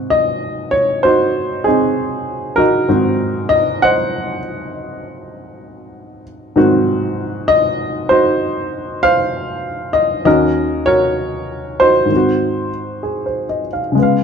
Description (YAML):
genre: solo jazz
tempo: 65 BPM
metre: 4/4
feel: swing 66% on 8ths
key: Ab mixolydian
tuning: A4 = 439 Hz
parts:
  - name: warm baby grand piano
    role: solo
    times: 0.0-14.2 s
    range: Eb2 to Gb5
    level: -14 LUFS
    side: equal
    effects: none
room: moderate studio reverb, RT60 0.9 s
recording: dark, warm production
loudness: -14 LUFS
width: side -6 dB against mid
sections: 0.0-14.2 A section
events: none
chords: 0.0 Ab7; 10.3 Ebm7; 12.1 Ab7